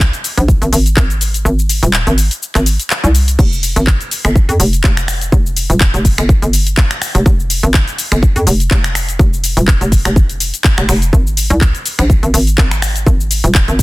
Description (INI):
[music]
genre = bass house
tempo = 124 BPM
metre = 4/4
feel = swing 55% on 16ths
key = unclear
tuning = A4 = 438 Hz
[part]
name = hollow knocking FM bass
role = bass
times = 0.0-13.8 s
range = Eb1 to F2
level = -13 LUFS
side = equal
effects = overdrive, sidechain pumping
[part]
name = electronic kick drum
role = drums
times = 0.0-13.8 s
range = none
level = -10 LUFS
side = equal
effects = studio reverb
[part]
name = house drum kit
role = drums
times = 0.0-13.8 s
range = crash cymbal, finger snaps, handclaps, hi-hat, shaker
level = -17 LUFS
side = left 1 dB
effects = studio reverb, soft clipping on snare
[sound]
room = little or no reverb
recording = dense, heavily limited modern master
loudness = -10 LUFS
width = side -20 dB against mid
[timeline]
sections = 0.0-13.8 A section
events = kick drops out 1.5-3.4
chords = none